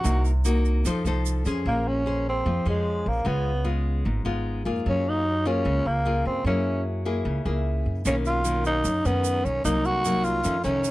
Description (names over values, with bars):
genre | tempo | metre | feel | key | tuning
bossa nova | 150 BPM | 4/4 | straight | Bb minor | A4 = 440 Hz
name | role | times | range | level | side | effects
growling tenor saxophone | melody | 0.0-10.9 s | Ab3 to Gb4 | -25 LUFS | equal | none
nylon-string guitar | accompaniment | 0.0-10.9 s | F2 to C5 | -28 LUFS | left 2 dB | none
upright bass | bass | 0.0-10.9 s | Ab1 to Gb2 | -26 LUFS | right 1 dB | none
tube shaker | percussion | 0.0-1.7, 8.1-10.9 s | none | -37 LUFS | right 10 dB | none
room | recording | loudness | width
little or no reverb | close, detailed microphones | -22 LUFS | side -17 dB against mid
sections
0.0-1.7 A section; 1.7-10.9 B section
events
tenor saxophone solo 0.0-1.7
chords
0.1 Cm7b5; 0.9 F7; 1.7 Bbm9; 3.2 Db7; 4.8 Gbmaj9; 6.4 Gb9; 8.0 Bmaj9; 9.6 Cm7b5